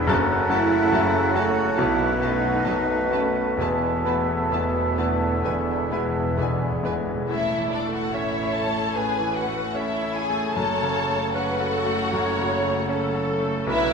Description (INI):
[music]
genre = classical, romantic movement for piano and orchestra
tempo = 62-77 BPM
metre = 4/4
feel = rubato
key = A major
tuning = A4 = 443 Hz
[part]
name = bright concert grand piano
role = melody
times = 0.0-13.9 s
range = E1 to A4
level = -25 LUFS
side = left 1 dB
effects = none
[part]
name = clear clarinet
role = second line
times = 0.0-6.9 s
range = A4 to B4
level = -33 LUFS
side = equal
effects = none
[part]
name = warm oboe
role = second line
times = 0.0-6.9 s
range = E5 to F#5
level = -31 LUFS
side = left 1 dB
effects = none
[part]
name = dark French horn section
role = sustained chords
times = 0.0-13.9 s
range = E3 to F#4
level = -32 LUFS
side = right 1 dB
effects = none
[part]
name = rich symphonic cello section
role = bass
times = 0.0-13.9 s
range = F#2 to F#4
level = -33 LUFS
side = right 3 dB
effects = none
[part]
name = warm symphonic violin section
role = melody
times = 0.1-13.9 s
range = D5 to A5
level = -30 LUFS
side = left 3 dB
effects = none
[part]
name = mellow large flute ensemble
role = second line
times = 0.1-7.0 s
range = G#5 to A5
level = -30 LUFS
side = right 3 dB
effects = none
[part]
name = warm symphonic violin section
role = second line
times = 0.1-13.9 s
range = D4 to B4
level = -31 LUFS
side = left 1 dB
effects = none
[part]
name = mellow bassoon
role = accompaniment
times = 0.1-7.3 s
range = B2 to E3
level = -31 LUFS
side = right 1 dB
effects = none
[part]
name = rich symphonic viola section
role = accompaniment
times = 0.1-13.9 s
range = E3 to C#5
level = -32 LUFS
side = right 2 dB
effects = none
[part]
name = warm trombone section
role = sustained chords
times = 0.1-6.9 s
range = F#2 to A3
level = -34 LUFS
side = right 3 dB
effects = none
[part]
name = clear symphonic double bass section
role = bass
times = 0.1-13.9 s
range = F#1 to F#2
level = -34 LUFS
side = right 4 dB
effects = none
[part]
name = timpani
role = percussion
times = 5.5-8.5 s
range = E2 to A2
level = -33 LUFS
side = left 2 dB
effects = none
[sound]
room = wet concert hall reverb, RT60 2.4 s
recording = minimal, uncompressed stereo recording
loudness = -21 LUFS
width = side -6 dB against mid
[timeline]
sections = 0.0-7.3 A section; 7.3-13.9 B section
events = timpani fill 5.5-7.3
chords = 0.1 F#m; 1.8 B7; 3.6 Esus4; 5.5 E; 7.3 A; 10.5 F#m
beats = | 0.08 0.92 1.78 2.65 | 3.58 4.51 5.45 6.39 | 7.29 8.14 8.95 9.74 | 10.54 11.33 12.11 12.89 | 13.68